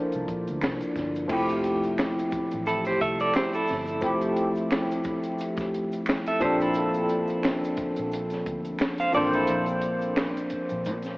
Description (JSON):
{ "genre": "R&B, neo-soul", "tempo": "88 BPM", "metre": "4/4", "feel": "swing 57% on 16ths", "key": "F major", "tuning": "A4 = 439 Hz", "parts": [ { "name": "barky tine electric piano", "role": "accompaniment", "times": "0.0-11.2 s", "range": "F3 to C5", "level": "-26 LUFS", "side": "equal", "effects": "analog chorus" }, { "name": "vintage muted fingered electric bass", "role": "bass", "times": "0.1-11.2 s", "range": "F1 to Bb2", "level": "-38 LUFS", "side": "equal", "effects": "none" }, { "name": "compact cocktail drum kit", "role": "drums", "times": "0.1-11.2 s", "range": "crash cymbal, finger snaps, hi-hat, kick drum, snare drum", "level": "-32 LUFS", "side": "equal", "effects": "none" }, { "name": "tube shaker and finger snaps", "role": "percussion", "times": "0.1-11.2 s", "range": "none", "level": "-43 LUFS", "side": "right 1 dB", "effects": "none" }, { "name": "clean electric guitar", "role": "second line", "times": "2.7-9.7 s", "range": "E4 to F5", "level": "-29 LUFS", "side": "right 1 dB", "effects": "tremolo" } ], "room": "wet cathedral reverb, RT60 6.6 s", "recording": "dreamy mix soaked in reverb, vinyl crackle, AM radio sound", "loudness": "-24 LUFS", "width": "side -22 dB against mid", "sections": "0.0-1.3 A section; 1.3-11.2 B section", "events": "tine electric piano solo 0.0-1.3; kick muted 9.5-11.2", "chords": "0.0 C9sus4; 1.3 Fmaj9; 6.4 Bbmaj9" }